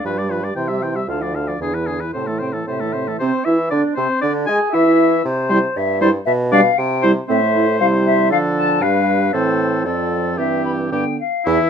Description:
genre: quick classical-period movement for wind quintet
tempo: 117 BPM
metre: 2/4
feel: straight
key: unclear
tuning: A4 = 440 Hz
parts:
  - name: mellow hollow silver concert flute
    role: melody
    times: 0.0-11.7 s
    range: C5 to E6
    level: -21 LUFS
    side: left 4 dB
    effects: none
  - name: clear oboe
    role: second line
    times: 0.0-11.7 s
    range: E4 to G#5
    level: -23 LUFS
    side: left 3 dB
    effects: none
  - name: mellow French horn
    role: accompaniment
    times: 0.0-11.7 s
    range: C3 to G#4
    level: -22 LUFS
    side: left 1 dB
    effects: none
  - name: mellow clarinet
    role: accompaniment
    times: 0.0-11.6 s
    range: A3 to G#4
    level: -22 LUFS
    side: right 7 dB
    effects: none
  - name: warm bassoon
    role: bass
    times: 0.1-11.6 s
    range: D2 to G#3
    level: -22 LUFS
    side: right 2 dB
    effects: none
room: moderate studio reverb, RT60 0.5 s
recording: dark, warm production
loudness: -15 LUFS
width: side -7 dB against mid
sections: 0.0-3.2 A section; 3.2-11.5 A section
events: none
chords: 0.1 G7; 0.6 C; 1.1 Dm; 1.6 E7; 2.1 Am; 3.2 Cadd9; 4.2 N.C.; 5.3 C; 6.3 G/B; 6.8 C; 7.3 Am7; 8.3 Dm; 8.8 G7; 9.3 Am; 9.9 Dm7/F; 10.4 C/G; 10.9 G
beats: | 0.06 0.56 | 1.08 1.60 | 2.13 2.67 | 3.20 3.71 | 4.22 4.74 | 5.25 5.76 | 6.27 6.78 | 7.29 7.80 | 8.31 8.82 | 9.33 9.85 | 10.38 10.93 | 11.46

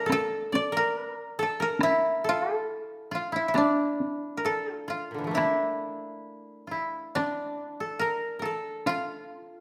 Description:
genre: japanese traditional, Japanese chamber music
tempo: 68 BPM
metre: 2/4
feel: uneven beats, rubato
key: D hirajoshi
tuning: A4 = 439 Hz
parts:
  - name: koto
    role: melody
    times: 0.0-9.6 s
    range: D4 to D5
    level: -31 LUFS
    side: equal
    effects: none
  - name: koto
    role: second line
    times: 0.0-9.6 s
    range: Bb2 to F5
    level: -34 LUFS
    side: equal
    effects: none
  - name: taiko ensemble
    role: percussion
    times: 0.1-9.1 s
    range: none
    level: -35 LUFS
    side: equal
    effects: none
room: moderate scoring stage reverb, RT60 1.5 s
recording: none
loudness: -29 LUFS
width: mono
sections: 0.0-5.4 A section; 5.4-9.6 B section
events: none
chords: none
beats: | 0.08 0.94 | 1.80 2.67 | 3.55 4.45 | 5.36 6.26 | 7.14 7.99 | 8.85

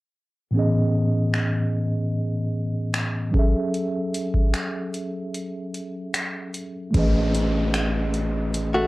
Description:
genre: contemporary R&B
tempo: 75 BPM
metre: 4/4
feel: straight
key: unclear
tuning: A4 = 440 Hz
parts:
  - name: mellow tine electric piano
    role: accompaniment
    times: 0.5-8.9 s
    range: A2 to E5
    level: -23 LUFS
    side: equal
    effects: medium stereo tremolo, cassette tape
  - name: booming analog drum machine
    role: drums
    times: 1.3-8.7 s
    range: finger snaps, hi-hat, kick drum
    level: -24 LUFS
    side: equal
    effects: cassette tape
  - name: warm 808-style bass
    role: bass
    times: 6.9-8.9 s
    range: A1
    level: -26 LUFS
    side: equal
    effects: none
  - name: downlifter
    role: sound effects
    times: 6.9-8.9 s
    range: none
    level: -32 LUFS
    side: equal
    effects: none
  - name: direct-recorded clean electric guitar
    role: arpeggios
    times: 8.7-8.9 s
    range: A3 to F#4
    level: -19 LUFS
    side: left 1 dB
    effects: cassette tape
room: moderate studio ambience, RT60 0.5 s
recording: home recording on cassette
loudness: -22 LUFS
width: side -19 dB against mid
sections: 0.5-6.9 A section; 6.9-8.9 B section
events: break 5.3-6.9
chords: 0.5 Amaj9#11; 3.3 F#m9; 6.9 Amaj9#11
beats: | 0.54 1.34 2.14 2.94 | 3.74 4.54 5.34 6.14 | 6.94 7.74 8.54

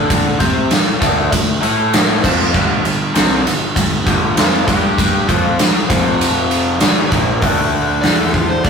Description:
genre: blues rock power trio and southern rock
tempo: 98 BPM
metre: 4/4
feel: straight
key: unclear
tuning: A4 = 439 Hz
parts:
  - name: raw garage guitar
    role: riff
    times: 0.0-8.7 s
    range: F2 to D5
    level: -18 LUFS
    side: left 1 dB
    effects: overdrive
  - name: fuzz picked electric bass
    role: bass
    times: 0.0-8.7 s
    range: F1 to D3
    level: -21 LUFS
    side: equal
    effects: overdrive
  - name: big rock drum kit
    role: drums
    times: 0.1-8.7 s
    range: crash cymbal, hi-hat, kick drum, ride cymbal, snare drum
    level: -14 LUFS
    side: equal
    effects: none
  - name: dark smooth lead guitar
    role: melody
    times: 8.0-8.7 s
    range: F4 to D5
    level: -20 LUFS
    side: equal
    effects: overdrive
room: light reverb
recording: rough rehearsal-room recording, warm saturation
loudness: -12 LUFS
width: side -6 dB against mid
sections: 0.0-7.4 A section; 7.4-8.7 B section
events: lead electric guitar solo 7.4-8.7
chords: 0.0 D5; 1.6 A5; 2.2 F5; 2.5 G5; 5.9 F5; 6.8 G5; 7.4 D5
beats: | 0.10 0.71 1.32 1.93 | 2.54 3.15 3.76 4.37 | 4.99 5.60 6.21 6.82 | 7.43 8.04 8.65

